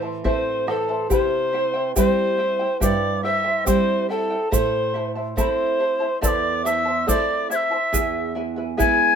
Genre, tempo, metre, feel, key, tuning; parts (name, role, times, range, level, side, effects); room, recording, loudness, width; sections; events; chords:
andean folk, Andean ensemble; 70 BPM; 4/4; straight; A minor pentatonic; A4 = 440 Hz
charango; accompaniment; 0.0-9.2 s; E4 to A5; -26 LUFS; equal
nylon-string guitar; accompaniment; 0.0-9.2 s; E2 to E4; -27 LUFS; right 4 dB
bright polished pan flute; melody; 0.2-9.2 s; A4 to G#5; -23 LUFS; equal
reedy quena; second line; 0.3-9.2 s; A5 to G#6; -26 LUFS; left 4 dB
bombo; percussion; 0.3-9.0 s; -25 LUFS; left 1 dB
egg shaker; percussion; 1.1-9.0 s; -28 LUFS; right 7 dB
moderate small room reverb, RT60 0.5 s; minimal, uncompressed stereo recording; -19 LUFS; side -7 dB against mid
0.0-1.1 A section; 1.1-9.2 A section
0.0 Am; 1.1 C; 4.5 Am; 7.9 E